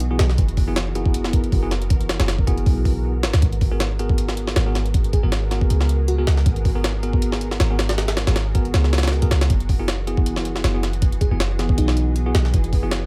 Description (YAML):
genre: drum and bass, jungle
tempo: 158 BPM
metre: 4/4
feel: swing 54% on 16ths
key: G# minor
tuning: A4 = 437 Hz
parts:
  - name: soft string machine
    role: sustained chords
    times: 0.0-13.1 s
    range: E3 to A#4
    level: -35 LUFS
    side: equal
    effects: ensemble chorus, vintage 12-bit sampler grit
  - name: bell-like tine electric piano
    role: stabs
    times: 0.0-12.9 s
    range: E3 to A#4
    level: -31 LUFS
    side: equal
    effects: dub echo
  - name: warm 808-style bass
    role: bass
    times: 0.0-13.1 s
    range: F#1 to C#2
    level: -23 LUFS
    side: equal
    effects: none
  - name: jungle sampler-style drum kit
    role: drums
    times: 0.0-13.0 s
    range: hi-hat, kick drum, snare drum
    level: -23 LUFS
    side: equal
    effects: none
  - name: bell-like FM electric piano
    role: melody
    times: 5.1-6.2, 11.2-12.2 s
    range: D#4 to G#4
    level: -34 LUFS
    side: equal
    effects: chorus, dub echo
room: digital ambience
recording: none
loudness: -20 LUFS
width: mono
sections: 0.0-3.4 A section; 3.4-13.1 A section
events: drop 0.0-3.4, 3.4-13.1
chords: 0.0 F#9sus4; 3.4 G#m9; 9.5 F#9sus4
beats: 0.01 | 0.39 0.77 1.15 1.52 | 1.91 2.29 2.67 3.04 | 3.42 3.80 4.18 4.56 | 4.94 5.32 5.70 6.08 | 6.46 6.84 7.22 7.60 | 7.98 8.36 8.74 9.12 | 9.50 9.88 10.26 10.64 | 11.02 11.40 11.78 12.16 | 12.54 12.92